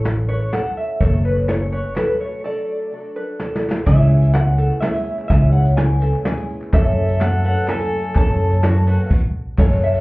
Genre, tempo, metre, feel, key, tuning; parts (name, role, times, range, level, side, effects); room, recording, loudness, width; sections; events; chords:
indie folk with a building arrangement; 126 BPM; 3/4; straight; A4 = 440 Hz
picked twelve-string acoustic guitar; accompaniment; 0.0-10.0 s; F#2 to A4; -28 LUFS; left 2 dB; ensemble chorus, plate reverb
open-back banjo; arpeggios; 0.0-9.1 s; G#4 to B4; -29 LUFS; right 2 dB; plate reverb
upright bass; bass; 0.0-10.0 s; F#1 to F#2; -16 LUFS; equal
soft brush drum kit; drums; 0.1-9.7 s; crash cymbal, hi-hat, kick drum, snare drum; -20 LUFS; equal
group handclap; percussion; 0.1-10.0 s; -38 LUFS; left 2 dB
electric guitar through a small old amp; melody; 0.3-10.0 s; B4 to A5; -25 LUFS; equal; tremolo, slapback echo, plate reverb
dark upright piano; accompaniment; 3.9-10.0 s; F#1 to F#5; -26 LUFS; right 2 dB; plate reverb
tambourine; percussion; 3.9-10.0 s; -57 LUFS; right 2 dB
rich fiddle; second line; 6.7-10.0 s; F#4 to A4; -28 LUFS; left 1 dB; plate reverb
light reverb; heard muffled through a wall, club reverb, EQ; -15 LUFS; side -22 dB against mid
0.0-3.9 A section; 3.9-9.6 B section
break 2.4-3.9; drum fill 3.4-3.9; stop 9.1-9.6
0.0 A; 1.0 F#m; 2.4 D/F#; 3.9 C#m; 6.7 F#m